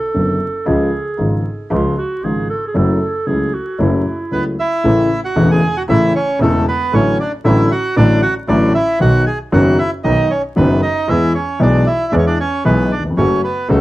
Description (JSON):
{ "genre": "tango", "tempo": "115 BPM", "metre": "4/4", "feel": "rubato", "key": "F# minor, A major from 4.8 s", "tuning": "A4 = 444 Hz", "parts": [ { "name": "mellow clarinet", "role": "second line", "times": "0.0-4.6 s", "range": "E4 to A4", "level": "-22 LUFS", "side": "right 3 dB", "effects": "cassette tape, tape echo" }, { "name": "dark concert grand piano", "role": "accompaniment", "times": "0.1-13.8 s", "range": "E1 to G#4", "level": "-15 LUFS", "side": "left 1 dB", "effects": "cassette tape" }, { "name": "clear double bass", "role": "bass", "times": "0.2-13.8 s", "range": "E1 to E2", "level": "-19 LUFS", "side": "right 1 dB", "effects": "none" }, { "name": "bandoneon", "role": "melody", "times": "4.3-13.8 s", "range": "A3 to G#5", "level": "-18 LUFS", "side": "right 2 dB", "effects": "cassette tape, plate reverb" } ], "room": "light reverb", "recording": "home recording on cassette, vinyl crackle", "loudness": "-13 LUFS", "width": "side -16 dB against mid", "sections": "0.0-4.8 A section; 4.8-13.8 B section", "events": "none", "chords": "0.0 Bm; 0.7 C#; 2.8 F#m7; 4.8 A; 6.9 Dadd9/A; 9.0 B; 11.1 E; 13.2 F#m", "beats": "0.14 | 0.67 1.19 1.71 2.23 | 2.75 3.27 3.79 4.32 | 4.84 5.37 5.89 6.41 | 6.93 7.45 7.97 8.49 | 9.01 9.53 10.04 10.56 | 11.08 11.60 12.12 12.65 | 13.17 13.69" }